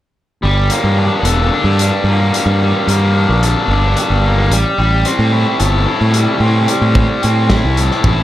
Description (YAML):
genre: indie rock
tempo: 110 BPM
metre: 4/4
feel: straight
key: G dorian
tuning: A4 = 440 Hz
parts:
  - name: distorted electric guitar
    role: riff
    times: 0.4-8.2 s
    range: G3 to A4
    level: -15 LUFS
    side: left 1 dB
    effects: overdrive
  - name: fuzz fingered electric bass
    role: bass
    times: 0.4-8.2 s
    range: E1 to A2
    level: -14 LUFS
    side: equal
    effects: overdrive
  - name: loose indie drum kit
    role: drums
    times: 0.7-8.2 s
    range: hi-hat, kick drum, snare drum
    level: -18 LUFS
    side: equal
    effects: none
room: light reverb, small room reverb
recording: none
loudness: -11 LUFS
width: side -13 dB against mid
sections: 0.4-8.2 A section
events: none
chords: 0.4 Gmadd9; 4.5 Am7